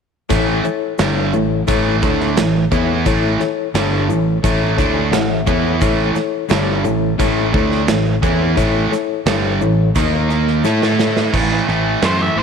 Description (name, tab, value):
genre	classic rock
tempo	87 BPM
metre	4/4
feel	straight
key	A major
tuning	A4 = 436 Hz
part	mellow reed electric piano	accompaniment	0.3-11.3 s	D#4 to A5	-21 LUFS	left 12 dB	fast tremolo
part	cranked stack guitar	riff	0.3-12.4 s	G2 to A4	-19 LUFS	right 10 dB	overdrive
part	crunchy overdriven guitar	riff	0.3-12.4 s	G2 to A4	-22 LUFS	left 10 dB	none
part	growling fingered electric bass	bass	0.3-12.4 s	G1 to A2	-20 LUFS	equal	overdrive
part	gated 80s drum kit	drums	0.3-12.2 s	crash cymbal, hi-hat, kick drum, snare drum	-21 LUFS	right 3 dB	none
part	egg shaker	percussion	0.3-11.2 s	none	-42 LUFS	left 14 dB	none
part	octave-fuzz lead guitar	melody	12.1-12.4 s	C5 to E5	-18 LUFS	equal	distortion, slapback echo
room	light reverb, studio ambience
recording	1960s-style stereo with parts hard left and right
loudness	-14 LUFS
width	side -6 dB against mid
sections	0.3-11.3 A section; 11.3-12.4 B section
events	reed electric piano fill 4.4-5.8; drum fill 10.6-11.3; lead electric guitar solo 11.3-12.4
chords	0.3 A; 10.0 D#5; 10.6 A; 11.3 A5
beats	| 0.30 0.99 1.68 2.37 | 3.06 3.75 4.44 5.13 | 5.82 6.51 7.20 7.89 | 8.58 9.27 9.96 10.65 | 11.34 12.03